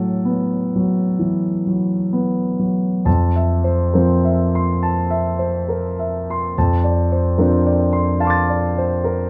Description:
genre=classical, impressionist solo piano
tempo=63-75 BPM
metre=4/4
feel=rubato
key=F major from 3.1 s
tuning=A4 = 440 Hz
part: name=warm concert grand piano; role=solo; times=0.0-9.3 s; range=F2 to A6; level=-18 LUFS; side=equal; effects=none
room=light reverb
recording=close, detailed microphones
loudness=-19 LUFS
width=mono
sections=0.0-3.1 A section; 3.1-9.3 B section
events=none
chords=0.0 Asus2; 3.1 Fmaj7; 6.6 Dm7/F

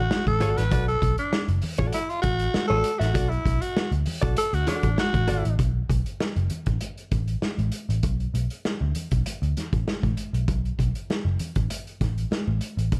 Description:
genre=funk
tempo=98 BPM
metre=4/4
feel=straight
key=B dorian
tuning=A4 = 436 Hz
part: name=growling tenor saxophone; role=melody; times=0.0-5.6 s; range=D4 to B4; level=-29 LUFS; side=equal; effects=none
part: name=vintage muted picked electric bass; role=bass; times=0.0-13.0 s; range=F#1 to D2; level=-27 LUFS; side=equal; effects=none
part: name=vintage drum kit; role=drums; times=0.1-13.0 s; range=hi-hat, kick drum, snare drum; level=-30 LUFS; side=equal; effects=none
part: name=congas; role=percussion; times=0.1-13.0 s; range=none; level=-38 LUFS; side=equal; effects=none
part: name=hollow-body jazz guitar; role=accompaniment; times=0.4-5.4 s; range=F#4 to E5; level=-32 LUFS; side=equal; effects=none
room=small room ambience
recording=none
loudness=-25 LUFS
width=mono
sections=0.0-5.6 A section; 5.6-13.0 B section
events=tenor saxophone solo 0.0-5.6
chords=0.0 Bm7; 5.6 B7(no3)

